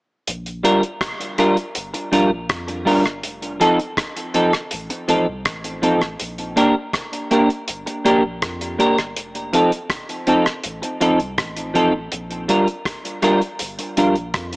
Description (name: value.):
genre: roots reggae.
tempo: 81 BPM.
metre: 4/4.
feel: straight.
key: Bb major.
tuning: A4 = 438 Hz.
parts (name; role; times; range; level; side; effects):
warm sub bass; bass; 0.3-14.6 s; F1 to F2; -34 LUFS; equal; none.
cloth-damped thuddy drum kit; drums; 0.3-14.6 s; hi-hat, kick drum, rim click; -24 LUFS; equal; none.
semi-hollow electric guitar; accompaniment; 0.6-14.1 s; F3 to Bb4; -18 LUFS; equal; analog chorus, tape echo.
room: light reverb, small room ambience.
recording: small speaker sound.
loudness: -17 LUFS.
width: side -24 dB against mid.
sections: 0.3-14.6 A section.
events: none.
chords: 0.3 Bb6; 3.2 F7; 6.2 Bb6; 9.2 F7; 12.1 Bb6.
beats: | 0.27 1.01 1.75 2.50 | 3.24 3.98 4.72 5.46 | 6.20 6.94 7.68 8.42 | 9.16 9.90 10.64 11.38 | 12.12 12.86 13.60 14.34.